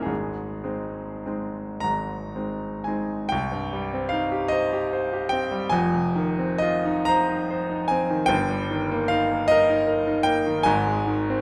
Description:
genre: classical, romantic nocturne for solo piano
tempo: 32-52 BPM (dotted quarters)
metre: 6/8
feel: rubato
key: Ab major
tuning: A4 = 440 Hz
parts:
  - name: bright concert grand piano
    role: solo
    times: 0.0-11.4 s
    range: Eb1 to Bb5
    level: -24 LUFS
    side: equal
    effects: none
room: moderate recital hall reverb, RT60 1.6 s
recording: none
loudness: -24 LUFS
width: mono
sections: 0.0-3.3 A section; 3.3-11.4 B section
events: none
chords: 0.1 Ab; 3.3 Cm; 5.7 Fm7; 8.3 Eb/G; 10.7 Ab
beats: | 0.09 1.86 | 3.32 4.53 | 5.73 7.09 | 8.31 9.50 | 10.67

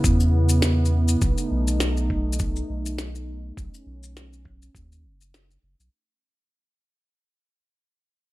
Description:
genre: folktronica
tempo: 102 BPM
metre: 4/4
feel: swing 56% on 16ths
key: unclear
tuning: A4 = 436 Hz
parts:
  - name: warm analog pad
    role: sustained chords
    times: 0.0-5.9 s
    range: C#3 to E4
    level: -27 LUFS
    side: right 1 dB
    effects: lush chorus
  - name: warm sub bass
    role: bass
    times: 0.0-5.9 s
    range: F#1 to E2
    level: -22 LUFS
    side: equal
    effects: none
  - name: electronic kick drum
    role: drums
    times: 0.0-4.9 s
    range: none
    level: -25 LUFS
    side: equal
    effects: none
  - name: electronic shaker and snare drum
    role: drums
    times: 0.0-5.9 s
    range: none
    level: -29 LUFS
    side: left 2 dB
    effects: none
room: little or no reverb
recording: none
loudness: -20 LUFS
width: side -18 dB against mid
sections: 0.0-5.9 A section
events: fade-out 0.0-5.9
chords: 0.0 C#m7; 1.2 B7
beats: 0.04 0.63 | 1.22 1.81 2.40 2.98 | 3.57 4.16 4.75 5.34

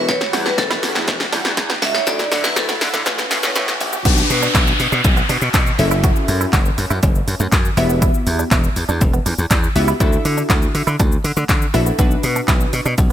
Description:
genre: dance-pop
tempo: 121 BPM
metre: 4/4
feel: straight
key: B minor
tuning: A4 = 441 Hz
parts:
  - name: glassy digital keys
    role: accompaniment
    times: 0.0-12.8 s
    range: F#3 to E5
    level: -24 LUFS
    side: left 2 dB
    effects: chorus, sidechain pumping
  - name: supersaw pad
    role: sustained chords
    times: 0.0-4.0 s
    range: B2 to F#4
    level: -28 LUFS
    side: equal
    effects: sidechain pumping
  - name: direct-recorded clean electric guitar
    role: riff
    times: 0.0-13.0 s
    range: A3 to F#4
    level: -27 LUFS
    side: right 8 dB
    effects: analog chorus
  - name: slap bass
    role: bass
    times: 0.0-13.1 s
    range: E1 to D3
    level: -20 LUFS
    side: equal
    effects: sidechain pumping
  - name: riser and downlifter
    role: sound effects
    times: 0.0-8.0 s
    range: none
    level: -24 LUFS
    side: equal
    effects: none
  - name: vibraphone with hard mallets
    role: melody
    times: 0.1-2.9 s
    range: A4 to E5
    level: -22 LUFS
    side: right 1 dB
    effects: none
  - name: punchy analog drum machine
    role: drums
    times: 0.1-13.1 s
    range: crash cymbal, handclaps, hi-hat, kick drum, shaker, snare drum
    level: -17 LUFS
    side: equal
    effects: none
room: light reverb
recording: bright 1980s-style digital production, high-pass filter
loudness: -14 LUFS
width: side -11 dB against mid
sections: 0.0-4.1 A section; 4.1-13.1 B section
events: build-up 0.0-4.1; drum fill 0.0-4.1; riser 0.0-4.1; drop 4.1-13.1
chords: 0.0 Emadd9; 2.1 Dadd9; 3.1 Aadd9; 4.1 Bm; 5.8 F#m7; 7.8 Emadd9; 10.0 Dadd9; 12.0 Bm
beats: | 0.09 0.58 1.08 1.57 | 2.07 2.56 3.06 3.56 | 4.05 4.55 5.04 5.54 | 6.04 6.53 7.03 7.52 | 8.02 8.52 9.01 9.51 | 10.00 10.50 10.99 11.49 | 11.99 12.48 12.98

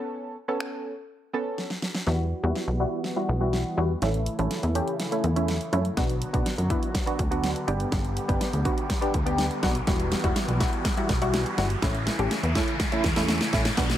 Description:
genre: dance-pop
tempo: 123 BPM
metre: 4/4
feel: straight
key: E dorian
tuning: A4 = 442 Hz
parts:
  - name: punchy chord stab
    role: accompaniment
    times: 0.0-14.0 s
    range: G3 to A4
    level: -29 LUFS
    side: equal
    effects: chorus, sidechain pumping, low-pass filter
  - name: pop drum kit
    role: drums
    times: 0.6-14.0 s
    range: finger snaps, hi-hat, kick drum, snare drum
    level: -28 LUFS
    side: equal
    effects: none
  - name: soft supersaw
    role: sustained chords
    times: 2.1-14.0 s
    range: C#3 to G4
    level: -33 LUFS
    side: right 1 dB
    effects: sidechain pumping, low-pass filter
  - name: plucky analog bass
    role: bass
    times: 2.1-14.0 s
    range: E1 to F#2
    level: -27 LUFS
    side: equal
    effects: sidechain pumping
  - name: riser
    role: sound effects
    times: 5.4-14.0 s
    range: none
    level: -35 LUFS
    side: equal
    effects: none
room: light reverb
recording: none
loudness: -24 LUFS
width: side -11 dB against mid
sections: 0.0-2.1 A section; 2.1-14.0 B section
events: drum fill 1.6-2.1, 2.1-14.0; build-up 2.1-14.0; filter sweep 2.1-14.0; riser 5.4-14.0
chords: 0.0 Aadd9; 2.1 Emadd9; 4.0 A; 6.0 Bm; 7.7 G; 9.9 Emadd9; 11.8 A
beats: | 0.12 0.61 1.09 1.58 | 2.07 2.56 3.04 3.53 | 4.02 4.51 5.00 5.48 | 5.97 6.46 6.95 7.43 | 7.92 8.41 8.90 9.39 | 9.87 10.36 10.85 11.34 | 11.82 12.31 12.80 13.29 | 13.78

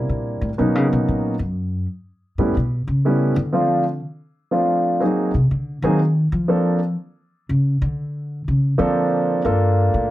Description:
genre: jazz piano trio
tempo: 122 BPM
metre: 3/4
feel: swing 66% on 8ths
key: unclear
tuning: A4 = 438 Hz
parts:
  - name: warm concert grand piano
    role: melody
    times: 0.0-10.1 s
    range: F3 to A4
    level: -19 LUFS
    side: equal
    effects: none
  - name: upright bass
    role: bass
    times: 0.0-10.1 s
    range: F#2 to F3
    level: -20 LUFS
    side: equal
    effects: none
room: moderate club reverb, RT60 0.5 s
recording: none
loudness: -18 LUFS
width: side -15 dB against mid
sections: 0.0-9.4 A section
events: upright bass solo 0.0-9.4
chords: 0.0 C9; 0.6 Bmaj9; 2.1 A7; 3.5 Dm7; 5.0 Ab9; 6.5 Bbmaj9; 9.4 Gm9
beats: 0.08 | 0.58 1.07 1.56 | 2.06 2.55 3.04 | 3.53 4.03 4.52 | 5.01 5.51 6.00 | 6.49 6.98 7.48 | 7.97 8.46 8.96 | 9.45 9.94

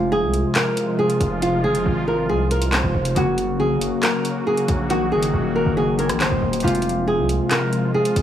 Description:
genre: hip hop, drill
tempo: 138 BPM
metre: 4/4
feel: half-time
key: F phrygian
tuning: A4 = 440 Hz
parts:
  - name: flamenco guitar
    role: melody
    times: 0.0-8.2 s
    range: F4 to C5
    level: -22 LUFS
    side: right 1 dB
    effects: tape echo
  - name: Celtic harp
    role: accompaniment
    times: 0.0-8.2 s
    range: C3 to Ab4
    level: -25 LUFS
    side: left 3 dB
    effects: none
  - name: sweeping resonant pad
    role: sustained chords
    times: 0.0-8.2 s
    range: C3 to Gb4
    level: -25 LUFS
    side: right 1 dB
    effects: chorus
  - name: distorted 808-style bass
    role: bass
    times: 0.0-8.2 s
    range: Eb1 to C2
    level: -24 LUFS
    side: equal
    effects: distortion
  - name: drill drum kit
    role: drums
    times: 0.3-8.2 s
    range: handclaps, hi-hat, rim click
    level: -25 LUFS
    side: equal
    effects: none
room: small room ambience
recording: none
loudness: -18 LUFS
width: side -10 dB against mid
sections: 0.0-8.2 A section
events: none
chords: 0.0 Fm; 3.2 Gb; 4.9 Ebm; 6.6 Fm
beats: 0.12 0.55 0.99 | 1.42 1.86 2.29 2.73 | 3.16 3.60 4.03 4.47 | 4.90 5.33 5.77 6.21 | 6.64 7.08 7.51 7.94

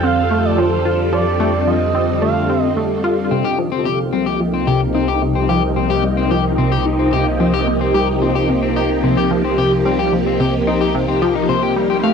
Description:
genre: ambient, sequencer-driven space music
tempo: 110 BPM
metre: 4/4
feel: straight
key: C dorian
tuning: A4 = 440 Hz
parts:
  - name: expressive portamento lead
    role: melody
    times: 0.0-2.7 s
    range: C5 to F5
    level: -22 LUFS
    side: right 8 dB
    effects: wide subtle chorus, cassette tape, tape echo
  - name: phased string machine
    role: sustained chords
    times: 0.0-12.1 s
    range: C3 to A4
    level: -18 LUFS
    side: equal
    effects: ensemble chorus, phaser, cassette tape
  - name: tight sequenced synth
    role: riff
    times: 0.0-12.1 s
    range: C3 to F4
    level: -20 LUFS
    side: equal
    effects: chorus, cassette tape, tape echo
  - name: analog drone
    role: bass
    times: 0.0-12.1 s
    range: C2 to F2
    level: -24 LUFS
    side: equal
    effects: chorus
  - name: electric guitar at the edge of break-up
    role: arpeggios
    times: 3.3-12.1 s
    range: C4 to F5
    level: -21 LUFS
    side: left 9 dB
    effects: auto-pan, cassette tape, tape echo
room: wet studio reverb, RT60 0.5 s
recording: home recording on cassette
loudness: -14 LUFS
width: side -6 dB against mid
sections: 0.0-12.1 A section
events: none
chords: 0.0 F; 3.3 Cm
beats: 0.04 0.58 | 1.13 1.67 2.22 2.76 | 3.31 3.85 4.40 4.95 | 5.49 6.04 6.58 7.13 | 7.67 8.22 8.76 9.31 | 9.86 10.40 10.95 11.49 | 12.04

